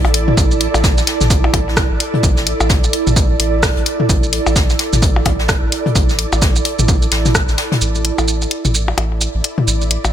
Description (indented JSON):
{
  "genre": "minimal techno",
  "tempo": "129 BPM",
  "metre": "4/4",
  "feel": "swing 59% on 16ths",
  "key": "unclear",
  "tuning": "A4 = 440 Hz",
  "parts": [
    { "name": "round analog bass", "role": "bass", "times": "0.0-10.1 s", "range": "A1", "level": "-19 LUFS", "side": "equal", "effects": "sidechain pumping" },
    { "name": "jazz brush drum kit", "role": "drums", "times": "0.0-7.8 s", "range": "hi-hat, snare drum", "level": "-25 LUFS", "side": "left 2 dB", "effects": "high-pass filter on hats, small room ambience, high-pass filter on snare, high-pass filter on room" },
    { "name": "electronic percussion blips and toms", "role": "percussion", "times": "0.0-10.1 s", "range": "none", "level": "-20 LUFS", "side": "left 3 dB", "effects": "small room ambience, ping-pong delay" },
    { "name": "ethereal airy pad", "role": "texture", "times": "0.0-10.1 s", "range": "E4 to D5", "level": "-21 LUFS", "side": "right 3 dB", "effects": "ensemble chorus, built-in reverb, sidechain pumping" },
    { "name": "garage drum kit", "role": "drums", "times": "0.1-10.1 s", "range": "hi-hat, rim click, shaker", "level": "-19 LUFS", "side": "equal", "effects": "small room ambience" },
    { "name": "electronic kick drum", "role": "drums", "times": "0.4-7.5 s", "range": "none", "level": "-16 LUFS", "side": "equal", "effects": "small room ambience" }
  ],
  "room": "little or no reverb",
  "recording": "none",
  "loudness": "-13 LUFS",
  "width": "side -10 dB against mid",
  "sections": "0.0-7.8 A section; 7.8-10.1 B section",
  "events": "none",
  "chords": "0.0 Asus4"
}